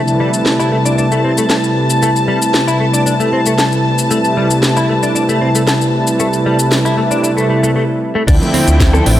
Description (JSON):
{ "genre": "nu-disco, nu disco", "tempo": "115 BPM", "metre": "4/4", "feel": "straight", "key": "unclear", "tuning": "A4 = 440 Hz", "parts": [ { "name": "warm analog pad", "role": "accompaniment", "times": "0.0-9.2 s", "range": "C3 to B4", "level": "-14 LUFS", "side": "equal", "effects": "chorus" }, { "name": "warm studio string section", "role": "sustained chords", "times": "0.0-9.2 s", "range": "G5 to A5", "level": "-20 LUFS", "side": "left 2 dB", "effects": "sidechain pumping" }, { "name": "house drum kit", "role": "drums", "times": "0.1-9.2 s", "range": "crash cymbal, hi-hat, rim click, shaker, snare drum", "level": "-19 LUFS", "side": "equal", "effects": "none" }, { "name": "direct-recorded clean electric guitar", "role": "riff", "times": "0.2-9.1 s", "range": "G3 to A4", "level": "-19 LUFS", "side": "left 1 dB", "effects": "ensemble chorus, vintage 12-bit sampler grit, low-pass filter" }, { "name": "fingered electric bass with an envelope filter", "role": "bass", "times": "8.3-9.2 s", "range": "A1 to D2", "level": "-12 LUFS", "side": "equal", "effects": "none" }, { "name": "electronic kick drum", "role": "drums", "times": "8.3-8.9 s", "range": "none", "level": "-12 LUFS", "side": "equal", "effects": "none" }, { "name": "bongos and congas", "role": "percussion", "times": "8.4-9.0 s", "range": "none", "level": "-21 LUFS", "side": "right 2 dB", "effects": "none" } ], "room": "light reverb", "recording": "none", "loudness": "-11 LUFS", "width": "side -12 dB against mid", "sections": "0.0-8.3 A section", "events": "filter sweep on analog synth pad 0.0-8.3; break 7.8-8.3", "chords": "0.0 Am7; 8.3 Dm7" }